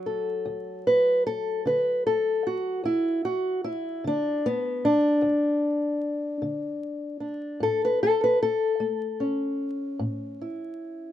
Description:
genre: acoustic country blues, solo or duo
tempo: 50 BPM (dotted quarters)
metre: 12/8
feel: straight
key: D major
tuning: A4 = 439 Hz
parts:
  - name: fingerpicked old ladder-braced acoustic guitar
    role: solo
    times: 0.0-11.1 s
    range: D2 to B4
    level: -24 LUFS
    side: left 1 dB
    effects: none
room: light reverb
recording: minimal, uncompressed stereo recording, vinyl crackle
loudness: -23 LUFS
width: side -11 dB against mid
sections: 0.0-11.1 A section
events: steel-string acoustic guitar solo 0.0-11.1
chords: 0.0 D; 7.6 A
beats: 0.46 1.65 | 2.84 4.03 5.22 6.42 | 7.61 8.80 9.99

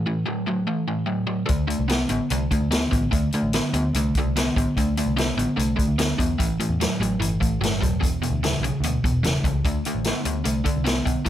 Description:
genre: blues rock power trio and southern rock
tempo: 147 BPM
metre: 4/4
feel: straight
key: unclear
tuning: A4 = 440 Hz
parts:
  - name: crunchy overdriven guitar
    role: riff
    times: 0.0-11.3 s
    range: E2 to B3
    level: -23 LUFS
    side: equal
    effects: none
  - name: vintage muted picked electric bass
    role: bass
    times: 1.5-11.3 s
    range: E1 to E2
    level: -26 LUFS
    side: equal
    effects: none
  - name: vintage drum kit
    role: drums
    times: 1.5-11.3 s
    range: hi-hat, kick drum, snare drum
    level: -25 LUFS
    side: equal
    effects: none
room: light reverb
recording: none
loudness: -20 LUFS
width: side -11 dB against mid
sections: 0.0-11.3 A section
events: none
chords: 0.0 A5; 1.5 D5; 6.4 A5; 8.0 E5; 9.6 D5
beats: 0.27 0.67 1.08 | 1.49 1.90 2.31 2.71 | 3.12 3.53 3.94 4.35 | 4.75 5.16 5.57 5.98 | 6.39 6.79 7.20 7.61 | 8.02 8.42 8.83 9.24 | 9.64 10.05 10.45 10.86 | 11.26

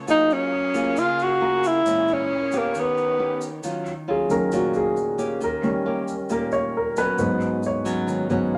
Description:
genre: bossa nova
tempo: 135 BPM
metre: 4/4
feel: straight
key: Eb minor from 3.6 s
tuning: A4 = 440 Hz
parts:
  - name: nylon-string guitar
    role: accompaniment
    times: 0.0-8.6 s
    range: Ab2 to G#4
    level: -30 LUFS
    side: equal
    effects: none
  - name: warm symphonic violin section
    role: sustained chords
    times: 0.0-3.6 s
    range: A#3 to E#5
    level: -38 LUFS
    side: equal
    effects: none
  - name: breathy tenor saxophone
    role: melody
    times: 0.1-3.4 s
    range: A#3 to F#4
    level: -22 LUFS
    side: equal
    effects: none
  - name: egg shaker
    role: percussion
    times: 0.1-8.5 s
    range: none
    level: -47 LUFS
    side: equal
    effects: none
  - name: warm grand piano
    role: accompaniment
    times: 0.5-8.6 s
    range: Ab2 to D#6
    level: -26 LUFS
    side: equal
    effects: none
room: moderate studio reverb, RT60 0.5 s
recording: none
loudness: -23 LUFS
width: mono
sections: 0.0-3.6 A section; 3.6-8.6 B section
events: grand piano solo 3.6-8.6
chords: 0.1 F#maj9; 1.9 A#m7b5; 2.7 D#aug7; 3.6 Ebm9; 5.4 Eb7; 7.2 Abm7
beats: | 0.07 0.52 0.96 1.41 | 1.85 2.30 2.75 3.19 | 3.64 4.08 4.53 4.97 | 5.42 5.86 6.30 6.75 | 7.19 7.64 8.08 8.53

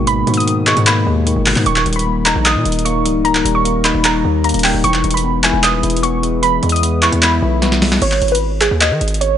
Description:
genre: hip hop, trap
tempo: 151 BPM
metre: 4/4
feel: half-time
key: G# harmonic minor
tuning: A4 = 440 Hz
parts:
  - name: tine electric piano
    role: accompaniment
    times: 0.0-8.0 s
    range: G#2 to E5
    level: -19 LUFS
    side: left 5 dB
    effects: low-pass filter
  - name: deep dark ambient pad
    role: sustained chords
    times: 0.0-8.0 s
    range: B2 to B4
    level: -23 LUFS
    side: left 1 dB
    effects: chorus, built-in reverb
  - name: hard-hitting 808-style bass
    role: bass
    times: 0.0-9.4 s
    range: C#1 to D#3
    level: -18 LUFS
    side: right 1 dB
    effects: none
  - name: warbly dusty pluck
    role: melody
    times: 0.1-9.4 s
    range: G#4 to D#6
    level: -18 LUFS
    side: right 2 dB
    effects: chorus, low-pass filter, digital delay
  - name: booming analog drum machine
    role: drums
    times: 0.1-9.3 s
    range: crash cymbal, handclaps, hi-hat, snare drum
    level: -17 LUFS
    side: equal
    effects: overdrive
room: little or no reverb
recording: nothing above 10.7 kHz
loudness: -12 LUFS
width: side -9 dB against mid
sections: 0.0-8.0 A section; 8.0-9.4 B section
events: drum fill 7.6-8.0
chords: 0.0 G#madd9; 1.7 D#; 4.8 E; 8.0 G#m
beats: | 0.07 0.47 0.87 1.26 | 1.66 2.06 2.46 2.85 | 3.25 3.65 4.05 4.44 | 4.84 5.24 5.63 6.03 | 6.43 6.83 7.22 7.62 | 8.02 8.42 8.81 9.21

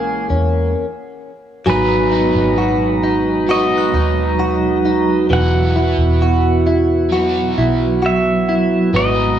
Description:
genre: dream pop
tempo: 66 BPM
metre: 4/4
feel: straight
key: G# minor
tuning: A4 = 440 Hz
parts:
  - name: pedal steel guitar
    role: melody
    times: 0.0-9.4 s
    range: G#4 to F#5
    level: -22 LUFS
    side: equal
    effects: analog delay
  - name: mellow tonewheel organ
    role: sustained chords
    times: 0.0-9.4 s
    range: G#3 to A#5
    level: -19 LUFS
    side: right 4 dB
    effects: slow rotary speaker
  - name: direct-recorded clean electric guitar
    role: arpeggios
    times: 0.0-9.4 s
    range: E3 to G#4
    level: -19 LUFS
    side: left 3 dB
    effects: analog chorus, analog delay
  - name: vintage muted fingered electric bass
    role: bass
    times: 0.0-9.4 s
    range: E1 to E2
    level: -19 LUFS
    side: right 1 dB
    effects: transformer saturation
  - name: glassy synth bell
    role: texture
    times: 0.0-6.0 s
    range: F#5 to F#6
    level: -31 LUFS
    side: right 5 dB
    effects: chorus, analog delay
  - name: overdriven semi-hollow guitar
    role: accompaniment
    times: 1.7-9.4 s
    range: G#2 to B4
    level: -22 LUFS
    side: right 3 dB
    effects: harmonic tremolo, lush chorus
room: light reverb, digital ambience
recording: dry, gritty hardware recording, small room ambience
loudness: -13 LUFS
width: side -10 dB against mid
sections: 0.0-1.7 A section; 1.7-9.4 B section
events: stop 0.8-1.7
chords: 0.0 A#m7b5; 1.7 G#m7; 5.3 Esus2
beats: 0.76 | 1.67 2.58 3.49 4.40 | 5.31 6.22 7.12 8.03 | 8.94

